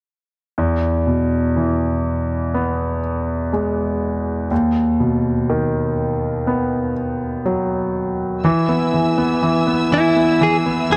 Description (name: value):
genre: pop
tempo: 61 BPM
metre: 4/4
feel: straight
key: E major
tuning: A4 = 440 Hz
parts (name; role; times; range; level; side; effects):
- clear concert grand piano; accompaniment; 0.6-11.0 s; D#2 to B3; -20 LUFS; equal; none
- warm studio string section; sustained chords; 8.4-11.0 s; B4 to E6; -28 LUFS; equal; none
- fingerpicked steel-string acoustic guitar; arpeggios; 8.4-11.0 s; E3 to G#4; -26 LUFS; equal; none
- direct-recorded clean electric guitar; melody; 9.9-11.0 s; E4 to G#4; -18 LUFS; equal; none
room: light reverb, small room ambience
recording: dark, warm production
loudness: -19 LUFS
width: mono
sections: 0.6-8.4 A section; 8.4-11.0 B section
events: none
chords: 0.6 E; 4.5 B/D#; 8.4 E